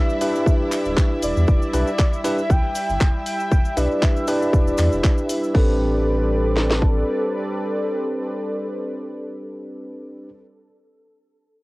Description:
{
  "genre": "deep house",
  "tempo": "118 BPM",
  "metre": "4/4",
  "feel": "swing 55% on 16ths",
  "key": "A minor",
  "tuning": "A4 = 443 Hz",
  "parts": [
    { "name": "warm velvety synth lead", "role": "melody", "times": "0.0-10.3 s", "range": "A4 to G5", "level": "-27 LUFS", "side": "equal", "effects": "chorus, cassette tape, analog delay" },
    { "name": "warm analog pad", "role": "sustained chords", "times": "0.0-10.3 s", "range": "G3 to E5", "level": "-30 LUFS", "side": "right 1 dB", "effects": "chorus, sidechain pumping, cassette tape" },
    { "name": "bell-like tine electric piano", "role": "stabs", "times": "0.0-10.3 s", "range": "C4 to B4", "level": "-24 LUFS", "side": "equal", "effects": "vintage 12-bit sampler grit, sidechain pumping, cassette tape" },
    { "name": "rich studio violin section", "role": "texture", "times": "0.0-5.6 s", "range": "E4 to E5", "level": "-36 LUFS", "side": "equal", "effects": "sidechain pumping, cassette tape" },
    { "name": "cabasa", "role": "percussion", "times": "0.1-5.5 s", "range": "none", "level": "-38 LUFS", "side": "left 6 dB", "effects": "none" },
    { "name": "house drum kit", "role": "drums", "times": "0.2-5.7 s", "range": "crash cymbal, handclaps, hi-hat", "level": "-31 LUFS", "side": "equal", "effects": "cassette tape" },
    { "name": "house drum kit", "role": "drums", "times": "0.5-7.0 s", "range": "kick drum, snare drum", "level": "-18 LUFS", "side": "equal", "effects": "cassette tape" },
    { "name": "sub bass with octave", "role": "bass", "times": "0.9-7.0 s", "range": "D1 to E2", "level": "-22 LUFS", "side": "equal", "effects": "sidechain pumping" }
  ],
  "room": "light reverb",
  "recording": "home recording on cassette",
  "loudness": "-18 LUFS",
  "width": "side -22 dB against mid",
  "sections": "0.0-5.5 A section; 5.5-9.6 B section",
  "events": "drop 0.0-5.5",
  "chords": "0.0 Em7; 5.5 Am11",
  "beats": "0.46 0.97 | 1.48 1.99 2.50 3.01 | 3.51 4.02 4.53 5.04 | 5.55 6.06 6.57 7.07 | 7.58 8.09 8.60 9.11"
}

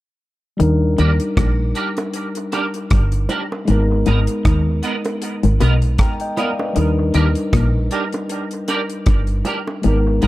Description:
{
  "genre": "lovers rock reggae",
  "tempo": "78 BPM",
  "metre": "4/4",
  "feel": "swing 55% on 16ths",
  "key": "Eb major",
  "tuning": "A4 = 440 Hz",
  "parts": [
    { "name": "mellow tine electric piano", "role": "accompaniment", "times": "0.6-10.3 s", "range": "G3 to Bb5", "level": "-22 LUFS", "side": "left 1 dB", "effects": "none" },
    { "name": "clean electric guitar", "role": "riff", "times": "0.6-10.3 s", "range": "G2 to Eb3", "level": "-22 LUFS", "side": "left 4 dB", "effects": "none" },
    { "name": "deep dub fingered electric bass", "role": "bass", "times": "0.6-10.3 s", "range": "G1 to Eb2", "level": "-17 LUFS", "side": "equal", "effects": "none" },
    { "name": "damped 70s drum kit", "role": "drums", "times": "0.6-10.3 s", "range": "hi-hat, kick drum, rim click", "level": "-19 LUFS", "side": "equal", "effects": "none" },
    { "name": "twangy electric guitar", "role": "stabs", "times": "1.0-10.3 s", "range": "Cb4 to Bb4", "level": "-26 LUFS", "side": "right 3 dB", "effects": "ensemble chorus, dub echo" },
    { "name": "bongos", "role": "percussion", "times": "2.0-9.8 s", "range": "none", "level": "-30 LUFS", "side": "right 2 dB", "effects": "dub echo" }
  ],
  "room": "small room reverb",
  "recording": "dark, warm production",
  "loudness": "-16 LUFS",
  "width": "side -16 dB against mid",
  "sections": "0.6-10.3 A section",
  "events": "none",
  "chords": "0.6 Ebmaj7; 3.7 Abmadd9; 6.8 Ebmaj7",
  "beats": "| 0.60 1.37 2.14 2.91 | 3.68 4.45 5.22 5.99 | 6.76 7.53 8.30 9.07 | 9.84"
}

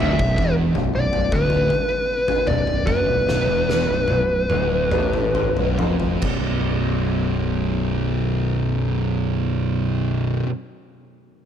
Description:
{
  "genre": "stoner and doom metal",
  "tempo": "65-80 BPM",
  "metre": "4/4",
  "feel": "straight",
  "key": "B minor",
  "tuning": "A4 = 440 Hz",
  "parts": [
    { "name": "fuzz lead guitar", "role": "melody", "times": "0.0-5.7 s", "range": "B4 to E5", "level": "-22 LUFS", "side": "equal", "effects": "distortion, tape echo" },
    { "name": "thick fuzz guitar", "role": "riff", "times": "0.0-10.5 s", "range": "B1 to B2", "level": "-23 LUFS", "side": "right 1 dB", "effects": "distortion" },
    { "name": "modern bright picked electric bass", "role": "bass", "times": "0.0-10.4 s", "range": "B0 to A1", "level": "-26 LUFS", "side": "equal", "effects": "overdrive" },
    { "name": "oversized low-tuned drum kit", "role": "drums", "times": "0.0-6.4 s", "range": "crash cymbal, kick drum, snare drum, toms", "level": "-25 LUFS", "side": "left 1 dB", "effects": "none" }
  ],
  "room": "light reverb, studio reverb",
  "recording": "none",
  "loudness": "-18 LUFS",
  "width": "side -9 dB against mid",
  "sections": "0.2-6.7 A section; 6.7-10.3 B section",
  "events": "drum fill 0.0, 3.3-6.7; slowing down 0.2-6.7",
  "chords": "0.2 Bm; 6.2 B5",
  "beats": "| 0.20 0.95 1.71 2.48 | 3.27 4.08 4.92 5.78 | 6.68 7.60 8.52 9.43"
}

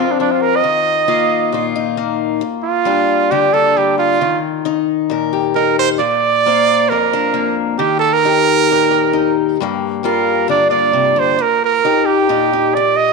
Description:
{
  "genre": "highlife",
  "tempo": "134 BPM",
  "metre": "4/4",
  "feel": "swing 54% on 16ths",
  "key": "unclear",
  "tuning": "A4 = 440 Hz",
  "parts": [
    { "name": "clear trumpet", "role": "melody", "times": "0.0-13.1 s", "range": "D4 to Eb5", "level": "-14 LUFS", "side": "right 8 dB", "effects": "none" },
    { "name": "picked acoustic archtop guitar", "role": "accompaniment", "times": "0.0-13.1 s", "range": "F2 to C5", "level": "-17 LUFS", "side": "left 10 dB", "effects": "none" }
  ],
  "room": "wet echo chamber reverb, RT60 1.5 s",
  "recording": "1960s-style stereo with parts hard left and right",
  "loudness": "-12 LUFS",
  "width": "side -3 dB against mid",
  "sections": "0.0-6.0 A section; 6.0-13.1 B section",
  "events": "trumpet solo 0.0-6.0",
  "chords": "0.0 Bbsus2; 0.6 Ebsus2; 2.4 Gm7; 4.2 Eb; 6.0 Bbadd9; 7.8 Eb; 9.6 Gm7; 11.4 Ebadd9",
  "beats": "0.19 | 0.64 1.08 1.53 1.98 | 2.42 2.87 3.32 3.77 | 4.22 4.66 5.11 5.56 | 6.01 6.46 6.90 7.35 | 7.80 8.25 8.70 9.14 | 9.59 10.04 10.49 10.94 | 11.38 11.83 12.28 12.73"
}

